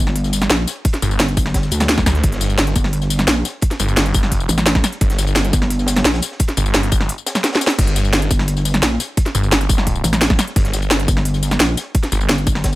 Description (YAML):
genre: dark technical drum and bass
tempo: 173 BPM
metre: 4/4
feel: straight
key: G minor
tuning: A4 = 441 Hz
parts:
  - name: pulsing pluck wobble bass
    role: bass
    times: 0.0-6.2, 8.3-12.8 s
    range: G1 to D2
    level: -18 LUFS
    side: equal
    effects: distortion, chorus
  - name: crunchy breakbeat drum kit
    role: drums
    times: 0.1-12.8 s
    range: hi-hat, snare drum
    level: -30 LUFS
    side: equal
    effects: high-pass filter on hats, high-pass filter on snare, high-pass filter on room
  - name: drum and bass drum kit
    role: drums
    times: 0.1-12.8 s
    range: crash cymbal, hi-hat, snare drum, tambourine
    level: -18 LUFS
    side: equal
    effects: none
  - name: electronic kick drum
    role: drums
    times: 0.8-12.7 s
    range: none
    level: -17 LUFS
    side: equal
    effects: none
  - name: snarling distorted saw bass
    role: bass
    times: 1.0-12.3 s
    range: G1 to D2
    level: -18 LUFS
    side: equal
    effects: distortion, overdrive, sidechain pumping
room: little or no reverb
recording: none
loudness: -14 LUFS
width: side -18 dB against mid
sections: 0.0-12.8 A section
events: drum fill 7.4-7.8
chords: 0.0 G5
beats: 0.16 0.50 | 0.85 1.20 1.54 1.89 | 2.24 2.58 2.93 3.28 | 3.62 3.97 4.32 4.67 | 5.01 5.36 5.71 6.05 | 6.40 6.75 7.09 7.44 | 7.79 8.13 8.48 8.83 | 9.17 9.52 9.87 10.21 | 10.56 10.91 11.25 11.60 | 11.95 12.29 12.64